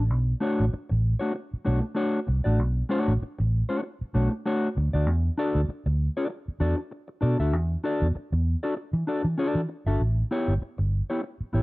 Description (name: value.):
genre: funk.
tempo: 97 BPM.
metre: 4/4.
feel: swing 56% on 16ths.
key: A mixolydian.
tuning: A4 = 440 Hz.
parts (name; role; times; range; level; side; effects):
mellow electric guitar; accompaniment; 0.0-11.6 s; A3 to E5; -28 LUFS; left 1 dB; none.
vintage muted fingered electric bass; bass; 0.0-11.6 s; G1 to E3; -23 LUFS; equal; none.
room: light reverb.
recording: cassette tape.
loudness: -24 LUFS.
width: side -21 dB against mid.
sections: 0.0-10.0 A section; 10.0-11.6 B section.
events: none.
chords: 0.1 Bm9; 5.1 E9sus4; 10.0 A9.